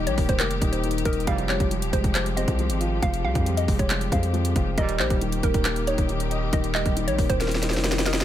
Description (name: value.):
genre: hip hop, trap.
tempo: 137 BPM.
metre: 4/4.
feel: half-time.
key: unclear.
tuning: A4 = 440 Hz.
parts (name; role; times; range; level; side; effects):
hollow square pluck; melody; 0.0-8.2 s; Bb4 to F5; -30 LUFS; equal; chorus.
dark concert grand piano; accompaniment; 0.0-8.2 s; Eb3 to Eb5; -29 LUFS; left 2 dB; none.
warm studio string section; sustained chords; 0.0-8.2 s; C3 to G4; -34 LUFS; left 3 dB; none.
long sustained 808-style bass; bass; 0.0-8.2 s; Eb1 to F2; -27 LUFS; equal; none.
trap drum kit; drums; 0.1-8.2 s; handclaps, hi-hat, kick drum, snare drum; -25 LUFS; equal; overdrive.
clear brass ensemble; stabs; 1.3-1.7, 4.8-5.2 s; C2 to G3; -34 LUFS; right 6 dB; tape echo.
room: small room ambience.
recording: none.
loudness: -21 LUFS.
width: side -11 dB against mid.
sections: 0.0-8.2 A section.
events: drum fill 7.4-8.2.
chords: 0.0 Eb; 1.3 Fmadd9; 4.8 Eb.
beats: 0.40 0.83 | 1.27 1.71 2.15 2.59 | 3.02 3.46 3.90 4.34 | 4.78 5.21 5.65 6.09 | 6.53 6.97 7.40 7.84.